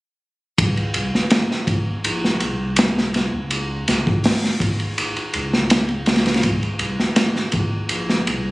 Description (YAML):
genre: trip hop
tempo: 82 BPM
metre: 4/4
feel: straight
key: unclear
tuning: A4 = 440 Hz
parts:
  - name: warm sub bass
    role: bass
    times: 0.6-8.5 s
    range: Ab1 to Db2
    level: -25 LUFS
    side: equal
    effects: none
  - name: crunchy breakbeat drum kit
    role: drums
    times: 0.6-8.4 s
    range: hi-hat, kick drum, ride cymbal, snare drum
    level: -18 LUFS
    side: equal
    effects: none
room: light reverb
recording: recorded on a phone in the room, club reverb, compression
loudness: -18 LUFS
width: side -20 dB against mid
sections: 0.6-8.5 A section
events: none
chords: none